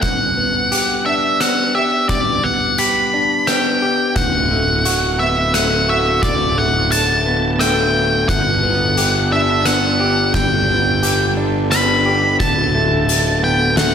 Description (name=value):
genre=post-rock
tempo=87 BPM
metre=3/4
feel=straight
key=unclear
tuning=A4 = 440 Hz
part: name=octave-fuzz lead guitar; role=melody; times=0.0-13.9 s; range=D5 to B5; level=-17 LUFS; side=equal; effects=distortion, slapback echo
part: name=electric guitar through a small old amp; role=arpeggios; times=0.0-13.9 s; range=D2 to G4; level=-20 LUFS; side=left 1 dB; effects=slapback echo
part: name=oversized low-tuned drum kit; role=drums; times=0.0-13.9 s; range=hi-hat, kick drum, rim click, snare drum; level=-21 LUFS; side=equal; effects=none
part: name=shimmering ambient pad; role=sustained chords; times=6.4-13.9 s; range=D3 to A4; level=-29 LUFS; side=right 1 dB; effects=chorus, built-in reverb, phaser
part: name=fuzz picked electric bass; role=bass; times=4.2-13.9 s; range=D1 to G1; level=-20 LUFS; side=equal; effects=overdrive
room=moderate lush hall reverb, RT60 2.1 s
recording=big arena sound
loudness=-14 LUFS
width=side -8 dB against mid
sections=0.0-13.9 A section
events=none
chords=0.0 Gmaj7; 4.2 D6; 8.3 Gmaj7; 12.4 D5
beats=| 0.03 0.72 1.41 | 2.10 2.78 3.47 | 4.16 4.85 5.54 | 6.22 6.91 7.60 | 8.28 8.97 9.66 | 10.34 11.03 11.71 | 12.40 13.09 13.77